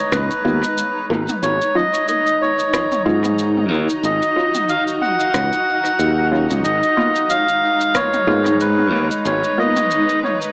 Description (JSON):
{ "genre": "ambient dub", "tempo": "92 BPM", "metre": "4/4", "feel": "swing 56% on 16ths", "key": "G# dorian", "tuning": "A4 = 441 Hz", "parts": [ { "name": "melodica", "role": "melody", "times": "0.0-10.4 s", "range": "B4 to F#5", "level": "-21 LUFS", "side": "equal", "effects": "dub echo" }, { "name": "granular cloud pad", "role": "sustained chords", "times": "0.0-10.5 s", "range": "G#3 to A#5", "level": "-26 LUFS", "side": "equal", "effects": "built-in reverb" }, { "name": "modern bright fingered electric bass", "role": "bass", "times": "0.1-9.4 s", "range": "G#1 to G#2", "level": "-21 LUFS", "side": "equal", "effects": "tube saturation" }, { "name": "electronic kick drum", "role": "drums", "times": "0.1-8.1 s", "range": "none", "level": "-41 LUFS", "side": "equal", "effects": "none" }, { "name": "organic electronic drum kit", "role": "drums", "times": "0.1-10.5 s", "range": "rim click, shaker, toms", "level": "-29 LUFS", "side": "equal", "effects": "overdrive, dub echo" }, { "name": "filtered dub chord stab", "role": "stabs", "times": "0.4-9.8 s", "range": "F#3 to E#4", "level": "-28 LUFS", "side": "equal", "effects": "phaser, dub echo" } ], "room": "moderate spring reverb, RT60 2.1 s", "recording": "AM radio sound", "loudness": "-18 LUFS", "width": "mono", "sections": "0.0-10.5 A section", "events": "none", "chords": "0.0 G#m69; 1.4 D#m9/G#; 6.6 G#m69" }